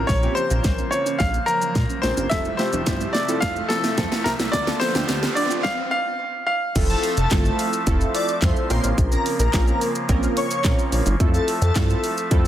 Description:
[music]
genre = dance-pop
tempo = 108 BPM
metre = 4/4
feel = straight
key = F major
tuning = A4 = 440 Hz
[part]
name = bright grand piano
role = melody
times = 0.0-6.7 s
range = A4 to F5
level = -24 LUFS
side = left 1 dB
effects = digital delay
[part]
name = warm analog keys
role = accompaniment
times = 0.0-12.5 s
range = A3 to Bb4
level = -27 LUFS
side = right 2 dB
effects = chorus, sidechain pumping
[part]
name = pipe organ, soft reed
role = sustained chords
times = 0.0-12.5 s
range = C3 to E5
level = -30 LUFS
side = left 1 dB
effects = sidechain pumping
[part]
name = soft round pluck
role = arpeggios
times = 0.0-5.6 s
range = F3 to E5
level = -33 LUFS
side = right 8 dB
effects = chorus, sidechain pumping, digital delay
[part]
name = chorused synth bass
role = bass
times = 0.0-12.5 s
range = F1 to Bb2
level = -23 LUFS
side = equal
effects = sidechain pumping
[part]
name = riser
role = sound effects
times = 0.8-5.6 s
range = none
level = -33 LUFS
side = right 1 dB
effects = none
[part]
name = pop drum kit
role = drums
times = 0.1-12.5 s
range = crash cymbal, handclaps, hi-hat, kick drum, shaker, snare drum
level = -23 LUFS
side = equal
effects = none
[part]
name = airy dreamy lead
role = melody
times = 6.9-12.0 s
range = A4 to D5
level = -26 LUFS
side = left 2 dB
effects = chorus, sidechain pumping, digital delay
[sound]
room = light reverb, digital ambience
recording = dense, heavily limited modern master, high-pass filter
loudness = -19 LUFS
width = side -11 dB against mid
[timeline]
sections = 0.0-6.8 A section; 6.8-12.5 B section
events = build-up 0.0-6.8; drum fill 0.0-5.6; filter sweep 0.0-6.8; riser 0.8-6.8; stop 5.6-6.8; drop 6.8-12.5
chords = 0.0 Bbmadd9; 2.3 Fmaj7; 4.5 Dm; 6.8 Fmaj7; 8.7 Bbmadd9; 11.2 Fmaj7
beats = | 0.09 0.65 1.20 1.76 | 2.31 2.87 3.42 3.98 | 4.54 5.09 5.65 6.20 | 6.76 7.31 7.87 8.42 | 8.98 9.54 10.09 10.65 | 11.20 11.76 12.31

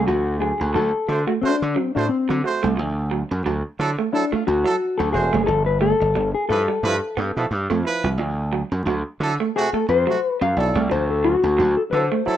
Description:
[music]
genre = funk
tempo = 89 BPM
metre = 4/4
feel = swing 56% on 16ths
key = D mixolydian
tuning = A4 = 439 Hz
[part]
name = mellow electric guitar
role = accompaniment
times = 0.0-12.4 s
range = C4 to F5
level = -21 LUFS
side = left 4 dB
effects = plate reverb
[part]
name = gritty slap bass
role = bass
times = 0.0-12.3 s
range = E1 to D3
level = -23 LUFS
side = right 1 dB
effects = overdrive
[part]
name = electric guitar through a small old amp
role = riff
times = 0.1-12.2 s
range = F3 to B3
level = -26 LUFS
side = right 7 dB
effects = none
[part]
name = dark horn section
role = second line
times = 1.1-12.4 s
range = C3 to C5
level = -25 LUFS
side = right 4 dB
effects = plate reverb
[sound]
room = moderate studio reverb, RT60 0.6 s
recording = rough home demo mix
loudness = -19 LUFS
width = side -11 dB against mid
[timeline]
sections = 0.0-12.4 A section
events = clean electric guitar solo 0.0-12.4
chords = 0.0 D; 5.5 G13; 8.2 D7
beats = | 0.07 0.75 1.43 2.10 | 2.78 3.45 4.13 4.81 | 5.48 6.16 6.84 7.51 | 8.19 8.87 9.55 10.22 | 10.90 11.58 12.26

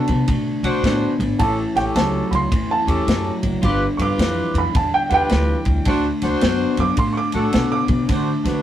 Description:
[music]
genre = electric blues shuffle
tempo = 108 BPM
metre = 4/4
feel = swing 64% on 8ths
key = D mixolydian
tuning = A4 = 440 Hz
[part]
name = warm upright piano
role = second line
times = 0.0-8.6 s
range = F#5 to D6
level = -23 LUFS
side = right 3 dB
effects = none
[part]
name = electric guitar through a small old amp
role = riff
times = 0.0-8.6 s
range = G2 to B3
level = -23 LUFS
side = left 2 dB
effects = none
[part]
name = mellow horn section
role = stabs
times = 0.0-8.6 s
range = C#4 to C5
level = -23 LUFS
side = equal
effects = none
[part]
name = upright bass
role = bass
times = 0.1-8.6 s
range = F#1 to D3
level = -23 LUFS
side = equal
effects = none
[part]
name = warm soul drum kit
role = drums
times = 0.1-8.5 s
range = kick drum, ride cymbal, snare drum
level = -24 LUFS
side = equal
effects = none
[sound]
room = moderate small room ambience, RT60 0.5 s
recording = rough rehearsal-room recording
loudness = -17 LUFS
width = side -11 dB against mid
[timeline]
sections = 0.0-8.6 A section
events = upright piano solo 0.0-8.6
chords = 0.0 D7; 1.4 A7; 3.6 G7; 5.9 D7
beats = 0.29 0.85 | 1.41 1.96 2.52 3.08 | 3.64 4.19 4.75 5.31 | 5.87 6.42 6.98 7.54 | 8.10

